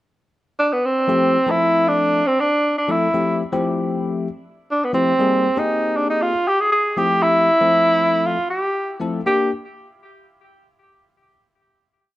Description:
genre	jazz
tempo	117 BPM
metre	4/4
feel	straight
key	unclear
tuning	A4 = 440 Hz
part	warm tenor saxophone	melody	0.6-9.5 s	B3 to Ab4	-17 LUFS	right 1 dB	none
part	barky tine electric piano	accompaniment	1.1-9.5 s	F3 to A4	-22 LUFS	left 3 dB	analog chorus
room	moderate large studio reverb, RT60 0.8 s, small room ambience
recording	none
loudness	-16 LUFS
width	side -16 dB against mid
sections	0.0-1.1 pickup bar; 1.1-9.3 A section; 9.3-11.3 final chord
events	none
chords	0.0 N.C.; 1.1 G13sus4; 5.2 Bb13sus4; 7.0 G13sus4; 9.3 Gm

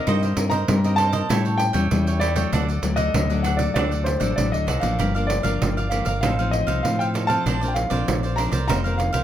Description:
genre	samba and choro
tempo	97 BPM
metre	4/4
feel	straight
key	G minor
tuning	A4 = 440 Hz
part	warm concert grand piano	melody	0.0-9.2 s	C5 to Bb5	-26 LUFS	equal	none
part	cavaquinho	accompaniment	0.0-9.2 s	D4 to G5	-29 LUFS	right 5 dB	none
part	nylon-string guitar	accompaniment	0.0-9.2 s	F2 to Bb4	-26 LUFS	left 4 dB	none
part	fingered electric bass with an envelope filter	bass	0.1-9.2 s	F1 to A2	-24 LUFS	equal	none
part	pandeiro	percussion	0.1-9.2 s	none	-26 LUFS	right 3 dB	none
room	light reverb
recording	close, detailed microphones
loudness	-19 LUFS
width	side -11 dB against mid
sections	0.0-5.0 A section; 5.0-9.2 B section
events	none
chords	0.1 Cm7/G; 1.3 A7; 2.5 D; 5.0 Gm7; 6.2 F7/A; 7.5 Bbadd9; 8.7 F7sus4

